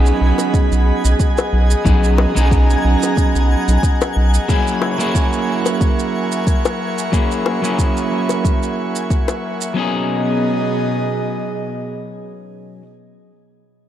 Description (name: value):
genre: sunset chillout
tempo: 91 BPM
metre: 4/4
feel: swing 54% on 16ths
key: B major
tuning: A4 = 440 Hz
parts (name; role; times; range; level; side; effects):
- electric guitar at the edge of break-up; accompaniment; 0.0-12.9 s; F#3 to G#4; -20 LUFS; moving between left 5 dB and right 6 dB; auto-pan, low-pass filter, digital delay
- airy breathy pad; sustained chords; 0.0-12.8 s; B2 to C#6; -23 LUFS; equal; chorus
- round analog bass; bass; 0.0-4.4 s; B1; -14 LUFS; equal; none
- twinkling granular texture; texture; 0.0-9.8 s; G#5 to G#6; -28 LUFS; equal; built-in reverb
- shaker; drums; 0.1-9.7 s; none; -28 LUFS; right 9 dB; none
- bongos; percussion; 0.4-9.4 s; none; -23 LUFS; left 5 dB; none
- electronic kick drum; drums; 0.5-9.2 s; none; -16 LUFS; equal; none
room: light reverb, digital ambience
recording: dark, warm production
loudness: -14 LUFS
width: side -11 dB against mid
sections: 0.0-9.8 A section; 9.8-12.4 B section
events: none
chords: 0.0 B6; 4.5 F#7; 9.8 B6